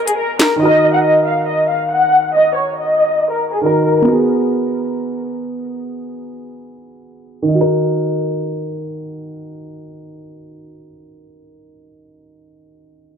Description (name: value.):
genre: hip hop, drill.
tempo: 139 BPM.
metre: 4/4.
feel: half-time.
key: Eb minor.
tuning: A4 = 440 Hz.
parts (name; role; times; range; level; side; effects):
warm studio violin section; melody; 0.0-4.0 s; Ab4 to Gb5; -14 LUFS; left 1 dB; low-pass filter, digital delay.
dark concert grand piano; accompaniment; 0.0-13.2 s; Eb3 to Bb4; -18 LUFS; right 2 dB; low-pass filter.
drill drum kit; drums; 0.1-0.5 s; handclaps, hi-hat, snare drum; -15 LUFS; equal; none.
room: light reverb.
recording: none.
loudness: -13 LUFS.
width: side -7 dB against mid.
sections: 0.0-7.5 A section; 7.5-11.0 B section.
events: break 0.0-0.6; filter sweep 0.0-7.5.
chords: 0.0 Abm7; 0.6 Ebm; 4.1 Abm7; 7.5 Ebm.